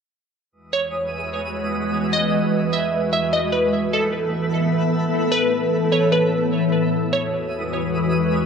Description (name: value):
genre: hip hop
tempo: 150 BPM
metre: 4/4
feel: half-time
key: E major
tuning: A4 = 439 Hz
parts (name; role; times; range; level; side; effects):
- glassy FM pad; sustained chords; 1.1-8.5 s; E2 to E5; -21 LUFS; equal; ensemble chorus, built-in reverb, phaser
- twinkling granular texture; texture; 0.9-8.5 s; G#3 to D#6; -29 LUFS; equal; built-in reverb
- glassy wavetable pluck; melody; 0.7-7.3 s; A4 to E5; -23 LUFS; right 1 dB; chorus, low-pass filter, analog delay
room: moderate spring reverb, RT60 1.4 s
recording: echo-heavy mix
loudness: -18 LUFS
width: side -6 dB against mid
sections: 0.5-8.5 A section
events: none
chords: 0.5 Emaj7; 3.7 Asus2; 6.9 Emaj7